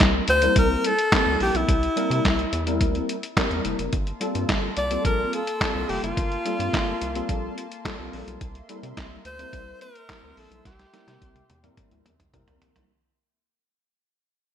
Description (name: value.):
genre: early-eighties boogie funk.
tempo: 107 BPM.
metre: 4/4.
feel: straight.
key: unclear.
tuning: A4 = 435 Hz.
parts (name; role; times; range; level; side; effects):
tine electric piano; accompaniment; 0.0-12.9 s; G3 to Bb4; -29 LUFS; left 2 dB; ensemble chorus.
rubbery square bass; bass; 0.0-12.9 s; F1 to C3; -30 LUFS; equal; none.
lo-fi sampler-style drum kit; drums; 0.0-12.9 s; handclaps, hi-hat, kick drum, snare drum, toms; -24 LUFS; equal; gated reverb.
breathy alto saxophone; melody; 0.3-11.7 s; E4 to D5; -24 LUFS; left 1 dB; ping-pong delay.
warm analog pad; sustained chords; 3.9-12.9 s; Bb3 to C6; -38 LUFS; left 1 dB; chorus.
room: light reverb.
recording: bright 1980s-style digital production.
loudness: -21 LUFS.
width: side -9 dB against mid.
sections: 0.0-12.9 A section.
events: fade-out 0.0-12.9; drum fill 10.7-12.9.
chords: 0.0 C7; 3.9 Gm11; 8.4 C7.